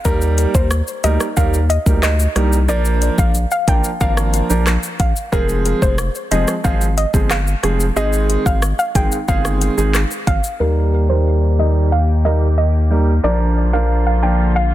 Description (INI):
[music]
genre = dancehall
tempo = 91 BPM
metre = 4/4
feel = straight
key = Eb major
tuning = A4 = 440 Hz
[part]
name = warm grand piano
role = accompaniment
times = 0.0-14.5 s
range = Eb3 to Bb4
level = -21 LUFS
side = right 4 dB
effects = sidechain pumping, low-pass filter
[part]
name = soft round pluck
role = melody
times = 0.1-14.7 s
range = Bb4 to G5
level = -22 LUFS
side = equal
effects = chorus, low-pass filter, ping-pong delay
[part]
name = round analog bass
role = bass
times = 0.1-14.7 s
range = F1 to Eb2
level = -16 LUFS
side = equal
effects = none
[part]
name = afro-pop drum kit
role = drums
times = 0.1-10.6 s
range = handclaps, hi-hat, kick drum, rim click, shaker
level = -19 LUFS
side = left 1 dB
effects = none
[part]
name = warm studio string section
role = sustained chords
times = 10.6-14.7 s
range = D3 to G4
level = -27 LUFS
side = left 2 dB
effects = sidechain pumping, low-pass filter
[sound]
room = little or no reverb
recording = dense, heavily limited modern master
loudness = -14 LUFS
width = side -14 dB against mid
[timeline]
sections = 0.0-10.6 A section; 10.6-14.7 B section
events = filter sweep 10.6-14.7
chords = 0.1 Eb; 2.7 Bb; 5.3 Fm; 8.0 Ab; 10.6 Eb; 13.2 Bb